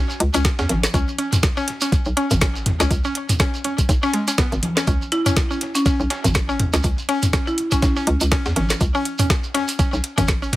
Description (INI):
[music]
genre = minimal techno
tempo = 122 BPM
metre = 4/4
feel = swing 57% on 16ths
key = C# minor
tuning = A4 = 441 Hz
[part]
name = mallet-like synth pluck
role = riff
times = 0.0-10.5 s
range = G#3 to C#4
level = -24 LUFS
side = left 2 dB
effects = chorus, sidechain pumping, tape echo
[part]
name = hollow knocking FM bass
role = bass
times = 0.0-10.6 s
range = G#1 to E2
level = -22 LUFS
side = equal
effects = sidechain pumping
[part]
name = dusty soul sampler-style drum kit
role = drums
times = 0.1-10.6 s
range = hi-hat, snare drum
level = -35 LUFS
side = equal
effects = none
[part]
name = shekere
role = percussion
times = 0.1-10.5 s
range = none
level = -28 LUFS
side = right 3 dB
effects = none
[part]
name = garage drum kit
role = drums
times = 0.2-10.6 s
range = hi-hat, snare drum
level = -23 LUFS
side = equal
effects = overdrive
[part]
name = electronic kick drum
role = drums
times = 0.4-10.4 s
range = none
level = -20 LUFS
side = equal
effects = overdrive
[part]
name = electronic congas and toms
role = percussion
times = 0.7-10.6 s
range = none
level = -22 LUFS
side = equal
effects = none
[part]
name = buzzing marimba with hard mallets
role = melody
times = 5.1-7.9 s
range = C#4 to E4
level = -25 LUFS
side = equal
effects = tape echo
[sound]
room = light reverb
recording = heavily compressed radio sound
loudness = -17 LUFS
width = side -16 dB against mid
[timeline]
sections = 0.0-10.6 A section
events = none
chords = 0.0 C#5